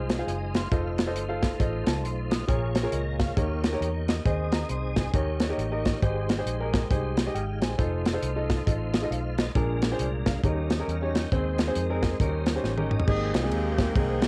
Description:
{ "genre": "uptempo gospel", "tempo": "136 BPM", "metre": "4/4", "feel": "swing 61% on 8ths", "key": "Ab major", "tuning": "A4 = 435 Hz", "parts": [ { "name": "warm upright piano", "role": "accompaniment", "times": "0.0-14.2 s", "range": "Ab2 to Eb6", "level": "-33 LUFS", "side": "equal", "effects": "none" }, { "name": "tonewheel organ", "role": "sustained chords", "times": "0.0-14.3 s", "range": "Eb3 to Bb5", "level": "-38 LUFS", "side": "equal", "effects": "fast rotary speaker, chorus vibrato" }, { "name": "vintage muted fingered electric bass", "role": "bass", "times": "0.0-14.3 s", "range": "F1 to F2", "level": "-33 LUFS", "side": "equal", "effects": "none" }, { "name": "tight funk drum kit", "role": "drums", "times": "0.1-14.3 s", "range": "crash cymbal, hi-hat, kick drum, ride cymbal, snare drum, toms", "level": "-29 LUFS", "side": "equal", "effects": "cassette tape" }, { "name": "mellow saxophone section", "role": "melody", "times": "13.1-14.3 s", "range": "Bb3 to Ab4", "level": "-34 LUFS", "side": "equal", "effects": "cassette tape, analog delay" } ], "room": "light reverb, studio ambience", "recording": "home recording on cassette", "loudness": "-27 LUFS", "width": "mono", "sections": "0.0-13.1 A section; 13.1-14.3 B section", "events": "tonewheel organ fill 8.7-9.6; drum fill 12.6-13.1", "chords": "0.0 Ab6; 0.7 F7; 2.5 Bbm7; 3.4 Eb7; 4.3 Ab/Eb; 5.1 Eb7; 6.0 Abmaj7; 7.8 F7; 9.6 Bb7; 10.4 Eb7; 11.3 Ab/Eb; 12.2 Eb7; 13.1 Abmaj9" }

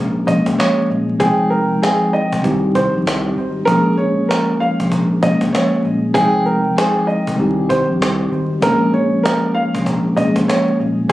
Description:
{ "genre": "hip hop, boom-bap hip-hop", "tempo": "97 BPM", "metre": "4/4", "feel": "swing 63% on 16ths", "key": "Bb dorian", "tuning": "A4 = 439 Hz", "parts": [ { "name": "mellow tine electric piano", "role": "accompaniment", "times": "0.0-11.1 s", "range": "Eb3 to G5", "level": "-17 LUFS", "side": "equal", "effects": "medium stereo tremolo, cassette tape, high-pass filter, low-pass filter" }, { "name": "saturated sub bass", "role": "bass", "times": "0.0-11.1 s", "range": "Eb1 to C2", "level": "-22 LUFS", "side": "equal", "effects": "none" }, { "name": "dark upright piano", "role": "melody", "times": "0.3-11.1 s", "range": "Ab4 to F5", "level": "-19 LUFS", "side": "right 1 dB", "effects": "high-pass filter, low-pass filter, tape echo" }, { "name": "cajon", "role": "drums", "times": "0.3-11.1 s", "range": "none", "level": "-23 LUFS", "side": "equal", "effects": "none" } ], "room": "moderate small room reverb, RT60 0.5 s", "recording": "recorded on a phone in the room, studio ambience, vinyl crackle, compression", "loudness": "-14 LUFS", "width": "side -16 dB against mid", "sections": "0.0-3.7 A section; 3.7-11.1 A section", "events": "none", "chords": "0.0 Bbm7; 1.2 Fm7; 2.4 Cm; 3.7 Bbm7; 6.2 Fm7; 7.4 Cm; 8.6 Bbm7" }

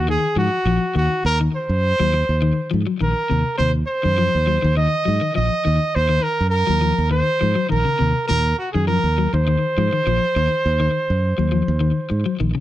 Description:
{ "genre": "afrobeat", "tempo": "102 BPM", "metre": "4/4", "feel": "straight", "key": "Eb dorian", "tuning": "A4 = 440 Hz", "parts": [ { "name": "warm trumpet", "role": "melody", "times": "0.0-12.4 s", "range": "Gb4 to Eb5", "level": "-21 LUFS", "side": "right 2 dB", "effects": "none" }, { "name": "fingered electric bass", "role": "bass", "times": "0.0-12.5 s", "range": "Bb1 to Ab2", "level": "-20 LUFS", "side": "right 1 dB", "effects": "none" }, { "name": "electric guitar at the edge of break-up", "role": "arpeggios", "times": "0.1-12.6 s", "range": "Bb2 to Gb3", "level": "-23 LUFS", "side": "left 5 dB", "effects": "slapback echo" } ], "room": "small room ambience", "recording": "dry, close 1970s-style studio recording", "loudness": "-17 LUFS", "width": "side -14 dB against mid", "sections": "0.0-12.6 A section", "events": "none", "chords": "0.0 Ebm69" }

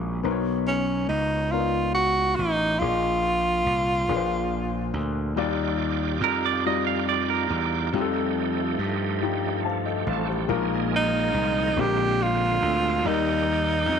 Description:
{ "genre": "slow gospel", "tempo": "47 BPM (dotted quarters)", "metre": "6/8", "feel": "straight", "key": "Eb major", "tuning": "A4 = 440 Hz", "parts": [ { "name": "dark concert grand piano", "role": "accompaniment", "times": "0.0-14.0 s", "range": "Bb2 to A5", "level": "-28 LUFS", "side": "left 11 dB", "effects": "none" }, { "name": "gritty slap bass", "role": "bass", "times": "0.0-14.0 s", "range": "A1 to G2", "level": "-28 LUFS", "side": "right 1 dB", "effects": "overdrive" }, { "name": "breathy tenor saxophone", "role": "melody", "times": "0.7-4.9, 11.0-14.0 s", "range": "C#4 to G4", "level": "-23 LUFS", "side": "right 1 dB", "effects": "none" }, { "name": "bright tonewheel organ", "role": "sustained chords", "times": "5.4-14.0 s", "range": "D3 to D5", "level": "-30 LUFS", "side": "right 10 dB", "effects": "fast rotary speaker, overdrive, chorus vibrato" }, { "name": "clean electric guitar", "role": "second line", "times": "6.2-7.9 s", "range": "Bb4 to F5", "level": "-26 LUFS", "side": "right 12 dB", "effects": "none" } ], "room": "moderate echo chamber reverb, RT60 2.8 s", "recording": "1960s-style stereo with parts hard left and right", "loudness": "-22 LUFS", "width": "side -7 dB against mid", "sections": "0.0-14.0 A section", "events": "grand piano fill 9.2-10.5", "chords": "0.3 Bmaj9; 2.8 Bb7sus4; 4.1 Bb9; 5.4 Ebmaj9; 7.9 F9; 10.5 Bb7sus4; 11.8 Bb9; 13.1 Ebmaj7" }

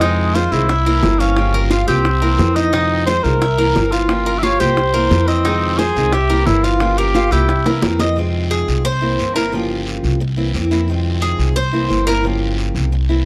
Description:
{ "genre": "latin, Cuban son and guajira", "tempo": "177 BPM", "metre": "4/4", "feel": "straight", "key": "F harmonic minor", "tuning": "A4 = 440 Hz", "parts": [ { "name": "mellow cor anglais", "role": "melody", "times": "0.0-7.8 s", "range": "Ab3 to E5", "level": "-21 LUFS", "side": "equal", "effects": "none" }, { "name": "picked old ladder-braced acoustic guitar", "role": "accompaniment", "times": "0.0-13.2 s", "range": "C3 to G4", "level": "-23 LUFS", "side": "equal", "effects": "none" }, { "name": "Cuban tres", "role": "arpeggios", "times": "0.0-12.2 s", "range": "Eb4 to F5", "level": "-24 LUFS", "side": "equal", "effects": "none" }, { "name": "upright bass", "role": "bass", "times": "0.0-13.2 s", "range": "G1 to F2", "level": "-21 LUFS", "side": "equal", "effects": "none" }, { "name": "bongos", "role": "percussion", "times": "0.0-8.1 s", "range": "none", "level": "-24 LUFS", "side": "equal", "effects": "none" }, { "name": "guiro", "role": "percussion", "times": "0.0-13.2 s", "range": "none", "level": "-33 LUFS", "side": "equal", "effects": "none" } ], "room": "little or no reverb", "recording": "dry, close 1970s-style studio recording", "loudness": "-16 LUFS", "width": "mono", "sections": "0.0-8.2 A section; 8.2-13.2 B section", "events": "drum fill 7.7-8.2; Cuban tres solo 8.2-13.2", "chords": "0.0 Fm7; 0.7 C7; 1.4 Gm7b5; 2.1 C7; 2.7 Fm7; 3.4 C7; 4.1 Gm7b5; 4.8 C7; 5.4 Fm7; 6.1 C7; 6.8 Gm7b5; 7.5 C7; 8.2 Fm7; 8.8 C7; 9.5 Gm7b5; 10.2 C7; 10.9 Fm7; 11.6 C7; 12.2 Gm7b5" }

